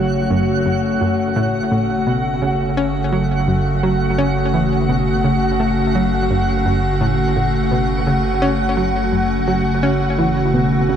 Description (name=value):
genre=ambient, sequencer-driven space music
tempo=85 BPM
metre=4/4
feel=straight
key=F# minor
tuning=A4 = 445 Hz
part: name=evolving wavetable pad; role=sustained chords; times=0.0-11.0 s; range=C#3 to F#5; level=-18 LUFS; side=equal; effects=chorus, built-in reverb
part: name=analog pluck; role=riff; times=0.0-11.0 s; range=F#2 to C#4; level=-20 LUFS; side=equal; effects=chorus, ping-pong delay
part: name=warm sub bass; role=bass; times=0.0-11.0 s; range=F#1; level=-25 LUFS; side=right 1 dB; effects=none
part: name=twinkling granular texture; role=texture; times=0.0-11.0 s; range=F#5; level=-28 LUFS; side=right 3 dB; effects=built-in reverb, wide subtle chorus
room=wet plate reverb, RT60 2.7 s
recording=dreamy mix soaked in reverb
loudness=-15 LUFS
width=side -9 dB against mid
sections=0.0-11.0 A section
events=none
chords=0.0 F#m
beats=0.30 | 1.01 1.71 2.42 3.13 | 3.83 4.54 5.24 5.95 | 6.66 7.36 8.07 8.77 | 9.48 10.19 10.89